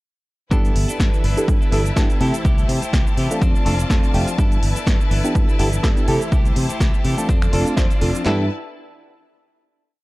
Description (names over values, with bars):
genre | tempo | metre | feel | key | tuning
filtered disco house | 124 BPM | 4/4 | swing 55% on 16ths | G mixolydian | A4 = 440 Hz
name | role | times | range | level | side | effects
reed electric piano | accompaniment | 0.5-8.4 s | A3 to C5 | -24 LUFS | right 1 dB | fast tremolo, phaser, sidechain pumping
clear studio string section | sustained chords | 0.5-8.5 s | E4 to A5 | -30 LUFS | left 1 dB | vintage 12-bit sampler grit, sidechain pumping
twelve-string electric guitar | riff | 0.5-8.5 s | E3 to A4 | -28 LUFS | left 2 dB | sidechain pumping
fingered electric bass | bass | 0.5-8.5 s | F1 to C3 | -22 LUFS | equal | sidechain pumping
punchy analog drum machine | drums | 0.5-8.4 s | handclaps, kick drum, snare drum | -18 LUFS | equal | overdrive
punchy analog drum machine | drums | 0.5-8.2 s | finger snaps, hi-hat, shaker, snare drum | -28 LUFS | equal | overdrive, sidechain pumping on perc, sidechain pumping on hats
room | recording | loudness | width
digital ambience | dark, warm production | -16 LUFS | side -20 dB against mid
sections
0.5-8.3 drop; 8.3-10.0 final chord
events
drop 0.5-8.3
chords
0.5 G69; 2.2 C6; 3.4 F6; 4.4 G69; 6.1 C6; 7.3 F6; 8.3 G69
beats
| 0.51 1.00 1.48 1.97 | 2.45 2.93 3.42 3.90 | 4.38 4.87 5.35 5.84 | 6.32 6.80 7.29 7.77 | 8.26